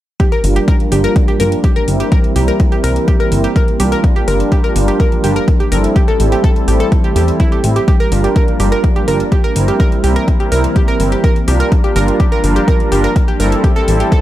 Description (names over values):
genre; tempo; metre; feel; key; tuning
progressive house; 125 BPM; 4/4; straight; G dorian; A4 = 441 Hz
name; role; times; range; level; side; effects
airy breathy pad; sustained chords; 0.4-14.2 s; E3 to G4; -21 LUFS; equal; chorus, sidechain pumping
analog pluck; arpeggios; 0.2-14.2 s; E4 to Bb4; -19 LUFS; right 1 dB; chorus, sidechain pumping, digital delay
electronic hi-hat; drums; 0.2-14.2 s; none; -28 LUFS; left 2 dB; overdrive, studio reverb
electronic kick drum; drums; 0.2-14.2 s; none; -13 LUFS; equal; overdrive, studio reverb
soft supersaw; stabs; 0.4-14.2 s; G3 to Bb4; -18 LUFS; right 1 dB; sidechain pumping, low-pass filter, digital delay
plucky analog bass; bass; 0.4-14.0 s; G1 to E2; -15 LUFS; equal; sidechain pumping
room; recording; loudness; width
digital ambience; none; -10 LUFS; side -14 dB against mid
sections
0.2-14.2 A section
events
filter sweep on supersaw synth 0.2-14.2; filter sweep on analog synth pad 0.2-14.2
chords
0.2 Gm7; 6.0 Am7; 7.9 Gm7; 13.6 Am7